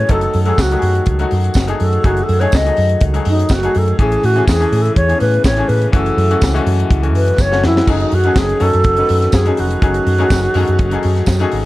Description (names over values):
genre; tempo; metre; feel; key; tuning
disco; 124 BPM; 4/4; straight; F# dorian; A4 = 440 Hz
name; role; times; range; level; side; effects
bright wooden-headed alto flute; melody; 0.0-11.5 s; D#4 to D#5; -17 LUFS; equal; none
bright concert grand piano; accompaniment; 0.0-11.7 s; E3 to B4; -21 LUFS; left 3 dB; none
mellow French horn section; sustained chords; 0.0-11.7 s; C#3 to G#4; -25 LUFS; right 1 dB; none
hollow-body short-scale fingered electric bass; bass; 0.0-11.7 s; E#1 to A2; -16 LUFS; equal; none
tight funk drum kit; drums; 0.1-11.6 s; crash cymbal, hi-hat, kick drum, snare drum; -17 LUFS; equal; none
tambourine; percussion; 0.6-11.4 s; none; -31 LUFS; right 7 dB; none
room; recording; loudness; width
small room ambience; dark, warm production; -12 LUFS; side -17 dB against mid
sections
0.0-7.9 A section; 7.9-11.7 B section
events
alto flute solo 0.0-7.9; drum fill 7.4-7.9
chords
0.1 F#m69; 4.0 Amaj7; 5.9 F#m7; 7.9 F#m69